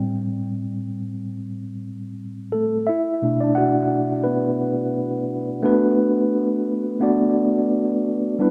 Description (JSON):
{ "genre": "hip hop", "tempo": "87 BPM", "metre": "4/4", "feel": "swing 58% on 16ths", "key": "B phrygian", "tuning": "A4 = 441 Hz", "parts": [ { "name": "mellow tine electric piano", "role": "solo", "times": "0.0-8.5 s", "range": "A2 to F#5", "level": "-22 LUFS", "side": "equal", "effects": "cassette tape, tape echo" } ], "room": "light reverb, digital ambience", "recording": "rough home demo mix", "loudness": "-22 LUFS", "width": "mono", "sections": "0.0-5.6 A section; 5.6-8.5 A section", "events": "tine electric piano solo 0.0-5.6", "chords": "0.0 Am7; 2.9 Bm7" }